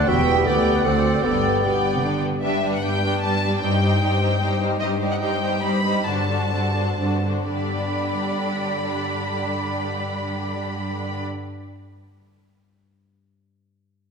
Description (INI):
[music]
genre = classical, dramatic, fast romantic movement for symphony orchestra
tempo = 112-160 BPM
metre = 3/4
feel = rubato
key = G major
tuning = A4 = 440 Hz
[part]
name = warm symphonic violin section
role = melody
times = 0.0-11.2 s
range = Eb5 to B5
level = -28 LUFS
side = left 2 dB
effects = none
[part]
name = clear oboe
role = second line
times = 0.0-2.2 s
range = D5 to F#5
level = -29 LUFS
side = right 4 dB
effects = none
[part]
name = warm clarinet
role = second line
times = 0.0-2.0 s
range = F#4 to B4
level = -26 LUFS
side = equal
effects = none
[part]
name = warm symphonic violin section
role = second line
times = 0.0-11.2 s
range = F#4 to G5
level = -29 LUFS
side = equal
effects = none
[part]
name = rich symphonic viola section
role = accompaniment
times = 0.0-11.2 s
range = D3 to Eb4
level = -27 LUFS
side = right 1 dB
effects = none
[part]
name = warm bassoon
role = accompaniment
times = 0.0-2.2 s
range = B3 to C4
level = -27 LUFS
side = right 2 dB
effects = none
[part]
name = warm French horn section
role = sustained chords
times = 0.0-2.2 s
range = B3 to G4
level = -28 LUFS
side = left 1 dB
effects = none
[part]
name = concert harp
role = arpeggios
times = 0.0-12.1 s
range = G2 to G5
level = -29 LUFS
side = left 5 dB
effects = none
[part]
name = rich symphonic cello section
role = bass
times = 0.0-11.2 s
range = D2 to D3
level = -26 LUFS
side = right 2 dB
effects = none
[part]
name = rich symphonic double bass section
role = bass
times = 0.0-2.2 s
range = E1 to D2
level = -30 LUFS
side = right 3 dB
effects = none
[part]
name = mellow large flute ensemble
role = second line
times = 0.1-2.2 s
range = F#5 to G5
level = -28 LUFS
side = left 1 dB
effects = none
[sound]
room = wet scoring stage reverb, RT60 1.9 s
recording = minimal, uncompressed stereo recording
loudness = -20 LUFS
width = side -6 dB against mid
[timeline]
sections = 0.0-2.4 A section; 2.4-7.5 B section; 7.5-10.5 C section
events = slowing down 4.2-7.5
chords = 0.1 Em; 0.5 G/D; 0.8 D7; 1.2 G; 3.6 Cm/G; 6.1 D7/G; 7.5 G